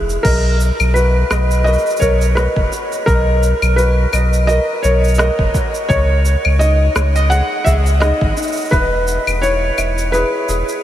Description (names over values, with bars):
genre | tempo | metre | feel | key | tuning
folktronica | 85 BPM | 4/4 | swing 56% on 16ths | B major | A4 = 440 Hz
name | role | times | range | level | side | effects
ukulele | arpeggios | 0.0-10.8 s | D#4 to E5 | -22 LUFS | equal | diffuse ambient delay
warm sub bass | bass | 0.0-10.6 s | E1 to C#2 | -15 LUFS | equal | none
organic electronic drum kit | drums | 0.1-10.8 s | claves, crash cymbal, rim click, shaker | -24 LUFS | equal | none
felt-muted upright piano | melody | 0.2-10.8 s | A#4 to F#5 | -18 LUFS | equal | diffuse ambient delay
electronic kick drum | drums | 0.2-8.9 s | none | -18 LUFS | equal | none
room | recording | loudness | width
moderate huge ambient reverb, RT60 7.6 s | dreamy mix soaked in reverb, vinyl crackle | -12 LUFS | side -12 dB against mid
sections
0.0-10.8 A section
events
none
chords
0.2 Bmaj7; 5.9 C#sus2; 8.7 E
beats
| 0.25 0.95 1.66 2.37 | 3.07 3.78 4.49 5.19 | 5.90 6.60 7.31 8.01 | 8.72 9.43 10.13